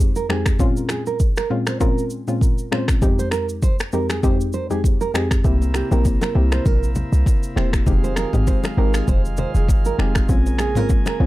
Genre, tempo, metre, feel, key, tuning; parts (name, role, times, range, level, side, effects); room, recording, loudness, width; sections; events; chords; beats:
afrobeats; 99 BPM; 4/4; swing 55% on 16ths; F minor; A4 = 440 Hz
soft round pluck; accompaniment; 0.0-11.3 s; F2 to G4; -23 LUFS; left 2 dB; chorus
afro-pop drum kit; drums; 0.0-11.2 s; finger snaps, kick drum, rim click, shaker, toms; -20 LUFS; equal
nylon-string guitar; riff; 0.2-11.2 s; G4 to C5; -27 LUFS; right 6 dB; digital delay
chamber organ, principal chorus; sustained chords; 5.4-11.3 s; C3 to Ab4; -30 LUFS; right 1 dB
short 808-style bass; bass; 5.4-11.3 s; E1 to C2; -19 LUFS; equal
congas and bongos; percussion; 5.4-11.2 s; -29 LUFS; left 1 dB
little or no reverb; dark, warm production; -17 LUFS; side -17 dB against mid
0.0-5.4 A section; 5.4-11.3 B section
0.0 Fm7; 0.6 Bbm7; 3.0 Fm7; 5.4 C7; 7.9 Fm7; 10.3 Bbm7
| 0.59 1.20 1.81 2.41 | 3.02 3.62 4.23 4.84 | 5.44 6.05 6.66 7.26 | 7.87 8.47 9.08 9.69 | 10.29 10.90